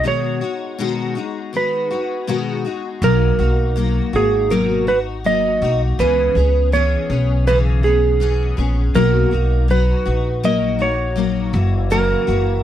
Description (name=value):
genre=indie pop, bedroom pop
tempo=81 BPM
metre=4/4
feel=swing 60% on 16ths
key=B major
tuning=A4 = 442 Hz
part: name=clean lap steel guitar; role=melody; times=0.0-12.6 s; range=G#4 to D#5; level=-19 LUFS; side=right 4 dB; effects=wide subtle chorus, slapback echo
part: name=picked steel-string acoustic guitar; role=accompaniment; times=0.0-12.6 s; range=F#2 to G#4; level=-21 LUFS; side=left 6 dB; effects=ensemble chorus, vibrato effect
part: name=upright bass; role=bass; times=3.0-12.6 s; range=F#1 to C#2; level=-18 LUFS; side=equal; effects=none
room=little or no reverb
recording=dry, close 1970s-style studio recording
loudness=-15 LUFS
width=side -11 dB against mid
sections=0.0-3.0 A section; 3.0-12.6 B section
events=break 0.1-3.0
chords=0.0 B6; 3.0 Bmaj7; 6.0 C#m7; 8.9 Bmaj7; 11.5 F#7